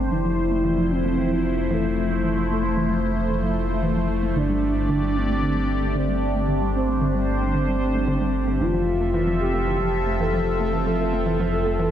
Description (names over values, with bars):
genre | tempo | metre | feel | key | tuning
synthwave | 113 BPM | 4/4 | straight | F major | A4 = 440 Hz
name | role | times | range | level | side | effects
expressive synth lead | melody | 0.0-11.9 s | A3 to A4 | -25 LUFS | equal | chorus, diffuse ambient delay
phased analog pad | sustained chords | 0.0-11.9 s | F3 to E5 | -26 LUFS | equal | phaser, chorus
warbly dusty pluck | arpeggios | 0.0-11.9 s | D3 to A3 | -27 LUFS | right 1 dB | chorus, cassette tape, diffuse ambient delay
dark detuned saw bass | bass | 0.0-11.9 s | F1 to G1 | -26 LUFS | equal | none
room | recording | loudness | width
wet cathedral reverb, RT60 7.0 s | dreamy mix soaked in reverb | -20 LUFS | side -10 dB against mid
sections
0.0-11.9 A section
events
filter sweep on synth arpeggio sound 0.0-11.9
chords
0.1 Fmaj7; 4.4 Gsus2; 8.6 Fmaj7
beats
| 0.12 0.65 1.18 1.71 | 2.24 2.77 3.30 3.83 | 4.36 4.89 5.42 5.96 | 6.49 7.02 7.55 8.08 | 8.61 9.14 9.67 10.20 | 10.73 11.27 11.80